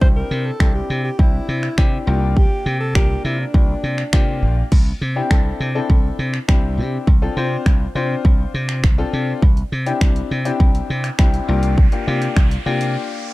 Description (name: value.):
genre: dance-pop.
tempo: 102 BPM.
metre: 4/4.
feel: straight.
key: C mixolydian.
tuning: A4 = 440 Hz.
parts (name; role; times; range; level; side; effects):
clear alto saxophone; melody; 0.0-4.4 s; D4 to C5; -27 LUFS; equal; none.
clear concert grand piano; accompaniment; 0.0-13.3 s; Bb3 to C5; -25 LUFS; left 5 dB; sidechain pumping.
slap bass; bass; 0.0-13.0 s; Bb1 to C3; -20 LUFS; equal; sidechain pumping.
pop drum kit; drums; 0.0-12.9 s; crash cymbal, finger snaps, hi-hat, kick drum; -15 LUFS; equal; none.
riser; sound effects; 10.4-13.3 s; none; -34 LUFS; right 4 dB; none.
room: little or no reverb.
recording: dark, warm production.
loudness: -15 LUFS.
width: side -19 dB against mid.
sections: 0.0-4.7 A section; 4.7-13.3 B section.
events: riser 10.4-13.3; break 13.0-13.3.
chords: 0.0 Cadd9; 2.1 Bb6/C; 4.7 Cadd9; 7.1 Dm7/C; 9.4 Cadd9; 11.5 Bb6/C.